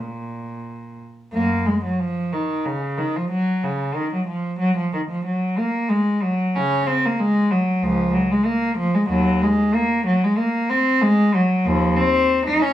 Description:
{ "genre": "classical, baroque-style suite movement for unaccompanied cello", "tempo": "93 BPM", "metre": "4/4", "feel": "rubato", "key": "Bb minor", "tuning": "A4 = 439 Hz", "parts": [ { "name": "warm cello", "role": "solo", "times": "0.0-12.7 s", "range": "Db2 to Eb4", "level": "-18 LUFS", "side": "equal", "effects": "none" } ], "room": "light reverb", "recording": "studio ambience", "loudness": "-18 LUFS", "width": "side -12 dB against mid", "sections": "0.0-1.3 A section; 1.3-12.7 A section", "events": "none", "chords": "none" }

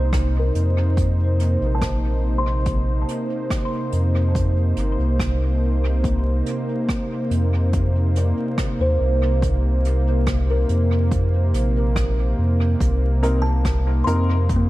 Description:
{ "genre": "ambient dub", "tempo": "71 BPM", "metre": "4/4", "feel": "straight", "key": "C dorian", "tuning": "A4 = 440 Hz", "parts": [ { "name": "warm analog pad", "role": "sustained chords", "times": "0.0-14.7 s", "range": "C3 to C5", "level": "-25 LUFS", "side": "right 1 dB", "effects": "chorus, vintage 12-bit sampler grit" }, { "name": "kalimba", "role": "arpeggios", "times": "0.0-14.7 s", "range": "Bb3 to C6", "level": "-30 LUFS", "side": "left 1 dB", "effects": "low-pass filter, tape echo" }, { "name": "warm sub bass", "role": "bass", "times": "0.0-14.7 s", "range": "G1 to F2", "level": "-19 LUFS", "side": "equal", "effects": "none" }, { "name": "electronic kick drum", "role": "drums", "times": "0.1-14.7 s", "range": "none", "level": "-24 LUFS", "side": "equal", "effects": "overdrive" }, { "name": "jazz brush drum kit", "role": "drums", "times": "0.1-14.7 s", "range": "hi-hat, rim click", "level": "-34 LUFS", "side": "right 2 dB", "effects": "dub echo" }, { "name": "dark upright piano", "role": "stabs", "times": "13.2-14.3 s", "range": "C4 to Bb4", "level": "-28 LUFS", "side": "left 1 dB", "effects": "low-pass filter, dub echo" } ], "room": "small room reverb", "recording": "vinyl crackle", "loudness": "-18 LUFS", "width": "side -17 dB against mid", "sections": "0.0-14.7 A section", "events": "filter sweep on kalimba 0.0-14.7", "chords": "0.0 Cm7" }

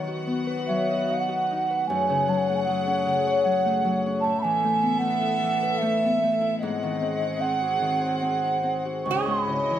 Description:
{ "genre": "celtic folk, Celtic slow air", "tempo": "75 BPM", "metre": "3/4", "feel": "rubato", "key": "unclear", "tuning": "A4 = 444 Hz", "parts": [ { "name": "Celtic harp", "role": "accompaniment", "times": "0.0-9.8 s", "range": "C#2 to G#5", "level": "-26 LUFS", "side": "left 4 dB", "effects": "none" }, { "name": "warm studio string section", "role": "sustained chords", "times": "0.0-9.8 s", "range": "A3 to F#5", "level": "-32 LUFS", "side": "equal", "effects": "none" }, { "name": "mellow hollow wooden flute", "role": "melody", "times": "0.7-9.8 s", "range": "D#5 to C#6", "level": "-25 LUFS", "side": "right 3 dB", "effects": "none" }, { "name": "lap resonator guitar", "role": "second line", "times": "9.1-9.8 s", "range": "G#4", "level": "-28 LUFS", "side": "right 4 dB", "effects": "none" } ], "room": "light reverb", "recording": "none", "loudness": "-22 LUFS", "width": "side -10 dB against mid", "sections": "0.0-9.8 A section", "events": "none", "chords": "0.0 B; 1.9 F#madd9; 4.2 Asus2; 6.6 G#7; 9.1 C#madd9" }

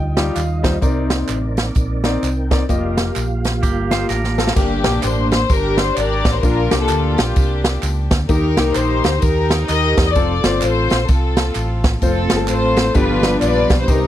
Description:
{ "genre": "uptempo gospel", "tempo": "129 BPM", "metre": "4/4", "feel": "swing 61% on 8ths", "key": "unclear", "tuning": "A4 = 440 Hz", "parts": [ { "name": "clean electric guitar", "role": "melody", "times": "0.0-0.6 s", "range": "Eb5", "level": "-43 LUFS", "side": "right 2 dB", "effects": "none" }, { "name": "clear grand piano", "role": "accompaniment", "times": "0.0-14.1 s", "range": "G2 to G5", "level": "-22 LUFS", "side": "left 4 dB", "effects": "none" }, { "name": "mellow tonewheel organ", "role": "sustained chords", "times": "0.0-4.5, 12.0-14.1 s", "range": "F3 to G5", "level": "-25 LUFS", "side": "right 3 dB", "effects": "slow rotary speaker, chorus vibrato" }, { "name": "fingered electric bass", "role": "bass", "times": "0.0-14.1 s", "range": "F1 to E2", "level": "-20 LUFS", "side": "equal", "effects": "none" }, { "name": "swinging big-band drum kit", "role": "drums", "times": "0.2-14.0 s", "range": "crash cymbal, hi-hat, kick drum, ride cymbal, snare drum", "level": "-18 LUFS", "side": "right 1 dB", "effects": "none" }, { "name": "tambourine and handclaps", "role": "percussion", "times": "0.2-14.0 s", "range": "none", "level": "-32 LUFS", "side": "right 3 dB", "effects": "none" }, { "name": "twangy electric guitar", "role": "second line", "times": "3.6-4.5 s", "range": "Bb3 to C5", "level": "-25 LUFS", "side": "right 7 dB", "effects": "none" }, { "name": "warm studio string section", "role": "melody", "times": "4.6-14.1 s", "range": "Bb3 to Eb5", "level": "-19 LUFS", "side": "left 2 dB", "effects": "none" } ], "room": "little or no reverb", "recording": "dry, close 1970s-style studio recording", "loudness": "-14 LUFS", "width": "side -12 dB against mid", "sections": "0.0-4.6 A section; 4.6-14.1 B section", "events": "grand piano fill 0.0-0.8; drum fill 4.1-4.6", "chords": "0.0 Ebmaj9; 0.8 Cm9; 2.7 F9sus4; 4.6 Gm; 6.4 Bb; 8.3 Eb; 10.2 F; 13.0 G7" }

